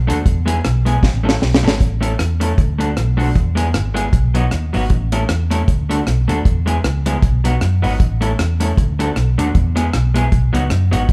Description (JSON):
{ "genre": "ska", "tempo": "155 BPM", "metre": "4/4", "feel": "swing 57% on 8ths", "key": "A major", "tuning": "A4 = 440 Hz", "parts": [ { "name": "vintage muted fingered electric bass", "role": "bass", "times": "0.0-11.1 s", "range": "G#1 to F#2", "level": "-20 LUFS", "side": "equal", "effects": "none" }, { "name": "electric guitar at the edge of break-up", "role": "accompaniment", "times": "0.1-11.0 s", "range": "F#3 to A4", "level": "-24 LUFS", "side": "equal", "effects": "none" }, { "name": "deep reggae drum kit", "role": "drums", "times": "0.1-11.1 s", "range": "hi-hat, kick drum, rim click, snare drum", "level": "-20 LUFS", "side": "equal", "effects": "none" } ], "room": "moderate large studio reverb, RT60 0.9 s", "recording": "band playing live in one room", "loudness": "-17 LUFS", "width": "mono", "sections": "0.0-1.8 A section; 1.8-11.1 A section", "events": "drum fill 1.0-1.8", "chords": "0.3 E; 1.0 A; 2.6 D; 3.4 E; 4.1 B; 4.9 A; 5.7 D; 6.5 E; 7.2 B; 8.0 A; 8.8 D; 9.5 E; 10.3 B" }